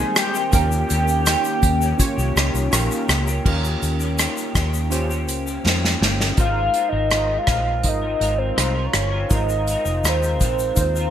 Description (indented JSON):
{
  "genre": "indie pop, bedroom pop",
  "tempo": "82 BPM",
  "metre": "4/4",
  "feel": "straight",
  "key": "Ab major",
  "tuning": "A4 = 440 Hz",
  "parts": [
    { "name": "warbly nostalgic lead", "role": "melody", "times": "0.0-11.1 s", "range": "C5 to Ab5", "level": "-22 LUFS", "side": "right 1 dB", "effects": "analog chorus, digital delay" },
    { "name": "electric guitar through a small old amp", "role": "accompaniment", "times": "0.0-11.1 s", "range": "Eb3 to C5", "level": "-27 LUFS", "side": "left 2 dB", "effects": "analog chorus, warbly pitch drift" },
    { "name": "warm analog keys", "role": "accompaniment", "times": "0.0-11.1 s", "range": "G3 to G5", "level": "-30 LUFS", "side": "right 3 dB", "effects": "chorus, cassette tape" },
    { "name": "ethereal airy pad", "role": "sustained chords", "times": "0.0-3.4 s", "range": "Eb3 to Bb4", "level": "-33 LUFS", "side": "equal", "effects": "none" },
    { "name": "unplugged drum kit", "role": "drums", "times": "0.2-11.1 s", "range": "crash cymbal, hi-hat, kick drum, rim click, shaker, snare drum", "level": "-21 LUFS", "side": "equal", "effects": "gated reverb" },
    { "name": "vintage muted fingered electric bass", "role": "bass", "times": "0.5-11.1 s", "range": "F1 to F2", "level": "-23 LUFS", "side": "equal", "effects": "none" }
  ],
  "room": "light reverb, small room ambience",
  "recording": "bright 1980s-style digital production",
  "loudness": "-18 LUFS",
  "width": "side -10 dB against mid",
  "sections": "0.0-3.5 A section; 3.5-6.4 B section; 6.4-11.1 C section",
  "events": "drum fill 5.7-6.4",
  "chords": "0.0 Abmaj7; 0.5 Eb7; 6.4 Ab69"
}